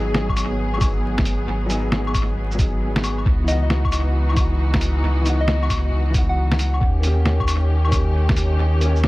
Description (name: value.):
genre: future garage.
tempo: 135 BPM.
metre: 4/4.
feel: swing 66% on 16ths.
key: G# minor.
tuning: A4 = 440 Hz.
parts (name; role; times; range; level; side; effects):
felt-muted upright piano; accompaniment; 0.0-9.1 s; D#3 to G#4; -29 LUFS; left 2 dB; sidechain pumping, tape echo.
muted studio string section; sustained chords; 0.0-9.1 s; D#3 to G#4; -27 LUFS; equal; sidechain pumping.
warm sub bass; bass; 0.0-9.1 s; G#1 to D#2; -20 LUFS; equal; sidechain pumping.
lo-fi sampler-style drum kit; drums; 0.1-9.1 s; claves, hi-hat, shaker, snare drum; -24 LUFS; left 1 dB; dub echo.
electronic kick drum; drums; 0.3-8.4 s; none; -21 LUFS; equal; none.
soft struck synth lead; melody; 3.5-6.9 s; D#5 to F#5; -29 LUFS; left 1 dB; chorus, analog delay.
room: light reverb.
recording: echo-heavy mix, vinyl crackle.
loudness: -17 LUFS.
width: side -19 dB against mid.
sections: 0.0-9.1 A section.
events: none.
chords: 0.0 G#m7; 3.3 C#m11; 6.8 D#7.